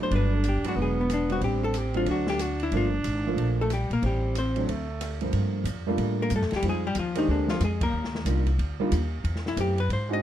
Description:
jazz, small-group swing and bop; 184 BPM; 4/4; swing 62% on 8ths; G minor; A4 = 441 Hz
archtop guitar, miked and amplified; melody; 0.0-10.2 s; D3 to Eb5; -29 LUFS; left 4 dB
warm concert grand piano; accompaniment; 0.0-10.2 s; G2 to G4; -30 LUFS; right 2 dB
warm alto saxophone; second line; 0.1-5.2 s; A3 to D4; -32 LUFS; right 3 dB
upright bass; bass; 0.1-10.2 s; E1 to A2; -27 LUFS; equal
open jazz drum kit; drums; 0.1-10.0 s; hi-hat, kick drum, ride cymbal, rim click, snare drum; -36 LUFS; right 1 dB
little or no reverb; close, detailed microphones; -24 LUFS; side -11 dB against mid
0.0-5.3 A section; 5.3-10.2 A section
band accent 7.8
0.1 Gmaj7; 0.8 E7; 1.4 Am11; 2.1 D7; 2.7 Gm7; 4.0 Am7; 4.7 Gm7; 6.6 Fm7; 7.3 Bb7; 7.9 Ebmaj7; 9.2 Am7

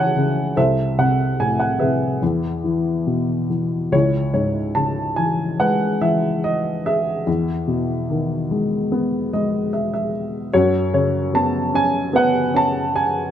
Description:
classical, lyrical solo piano; 73 BPM; 4/4; rubato; C# minor from 3.9 s; A4 = 441 Hz
dark upright piano; solo; 0.0-13.3 s; C2 to A5; -18 LUFS; equal
light reverb; close, detailed microphones; -18 LUFS; side -10 dB against mid
0.0-3.9 A section; 3.9-13.3 B section
upright piano fill 8.9-10.5
0.0 C#m; 0.6 Am/C; 2.2 E; 3.9 C#m7; 7.3 Emaj7; 10.5 F#sus4

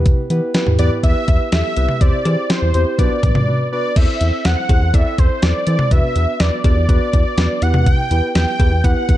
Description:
synth-pop; 123 BPM; 4/4; straight; E minor; A4 = 438 Hz
muted felt-like synth keys; accompaniment; 0.0-9.2 s; B3 to D5; -23 LUFS; equal; chorus
round analog bass; bass; 0.0-9.2 s; B1 to E3; -17 LUFS; equal
clean 12-bit digital drum machine; drums; 0.1-9.2 s; cowbell, crash cymbal, hi-hat, kick drum, snare drum, toms; -16 LUFS; equal
wide unison lead; melody; 0.8-9.2 s; C5 to G5; -21 LUFS; equal; tape echo
light reverb; dark, warm production; -13 LUFS; side -14 dB against mid
0.0-4.0 A section; 4.0-9.2 B section
break 3.5-4.0
0.0 Em; 2.0 C/E; 3.0 Bm; 4.0 Am/E; 5.9 Bm/E; 7.6 Emadd9

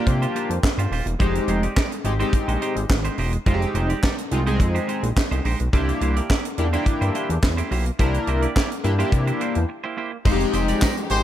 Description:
early-eighties boogie funk; 106 BPM; 4/4; straight; F dorian; A4 = 440 Hz
chorused polysynth; accompaniment; 0.0-10.9 s; Ab3 to Bb4; -25 LUFS; left 2 dB
semi-hollow electric guitar; riff; 0.0-11.1 s; Ab3 to D5; -30 LUFS; right 6 dB; lush chorus
chorused synth bass; bass; 0.1-11.2 s; Eb1 to C3; -22 LUFS; equal
tight funk drum kit; drums; 0.1-11.2 s; crash cymbal, handclaps, hi-hat, kick drum, snare drum; -23 LUFS; equal; gated reverb
warm studio string section; sustained chords; 10.3-11.2 s; F3 to G4; -31 LUFS; equal
tambourine; percussion; 10.3-11.2 s; -37 LUFS; left 8 dB
clear horn section; second line; 11.1-11.2 s; Ab3 to C5; -20 LUFS; left 2 dB
small room ambience; -19 LUFS; side -12 dB against mid
0.0-10.3 A section
break 9.7-10.3
0.0 C7sus4; 1.2 Fm9; 5.7 C7; 10.3 Fm9

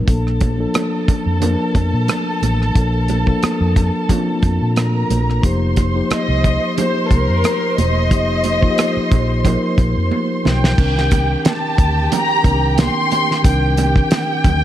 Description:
lush 1970s-style soul; 90 BPM; 4/4; swing 54% on 16ths; Bb major; A4 = 445 Hz
mellow tine electric piano; accompaniment; 0.0-14.6 s; Eb3 to Bb4; -21 LUFS; left 2 dB
vintage muted fingered electric bass; bass; 0.0-14.6 s; E1 to Bb2; -18 LUFS; equal
warm studio violin section; second line; 0.1-14.6 s; G4 to C6; -24 LUFS; right 2 dB
cloth-damped thuddy drum kit; drums; 0.1-14.6 s; crash cymbal, hi-hat, kick drum, rim click, snare drum; -17 LUFS; equal
congas; percussion; 0.1-14.6 s; -26 LUFS; right 7 dB
warm studio violin section; melody; 6.1-14.6 s; A4 to C6; -20 LUFS; left 2 dB; analog delay
light reverb; dark, warm production; -14 LUFS; side -12 dB against mid
0.0-10.8 A section; 10.8-14.6 B section
drum fill 10.1-10.8
0.1 Bbmaj7; 5.4 F9sus4; 10.8 Cm9

